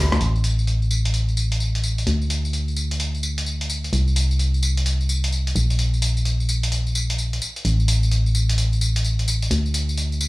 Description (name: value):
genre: UK garage, two-step garage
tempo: 129 BPM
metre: 4/4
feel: swing 64% on 16ths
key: A minor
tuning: A4 = 440 Hz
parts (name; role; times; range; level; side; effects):
- organ-like FM bass; bass; 0.0-10.3 s; A1 to D2; -20 LUFS; equal; none
- breakbeat sampler-style drum kit; drums; 0.1-10.3 s; hi-hat, rim click, tambourine; -26 LUFS; equal; none
room: little or no reverb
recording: dry, gritty hardware recording, transformer saturation, studio reverb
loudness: -19 LUFS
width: side -20 dB against mid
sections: 0.2-10.3 A section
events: drum fill 0.0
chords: none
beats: | 0.21 0.67 1.14 1.60 | 2.07 2.53 3.00 3.46 | 3.93 4.39 4.86 5.32 | 5.79 6.25 6.72 7.18 | 7.65 8.12 8.58 9.04 | 9.51 9.97